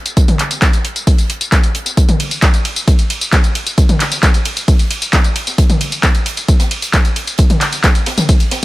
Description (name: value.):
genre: techno.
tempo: 133 BPM.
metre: 4/4.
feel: straight.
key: none.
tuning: none.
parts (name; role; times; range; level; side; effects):
techno drum kit; drums; 0.1-8.6 s; handclaps, hi-hat, ride cymbal, tambourine, toms; -16 LUFS; equal; none.
electronic kick drum; drums; 0.2-8.4 s; none; -11 LUFS; equal; overdrive.
open jazz drum kit; drums; 0.2-8.6 s; hi-hat, snare drum; -28 LUFS; right 3 dB; none.
room: little or no reverb.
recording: none.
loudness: -11 LUFS.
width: side -18 dB against mid.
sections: 0.0-8.6 A section.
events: none.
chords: none.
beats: | 0.17 0.62 1.07 1.52 | 1.97 2.42 2.88 3.33 | 3.78 4.23 4.68 5.13 | 5.58 6.03 6.49 6.94 | 7.39 7.84 8.29.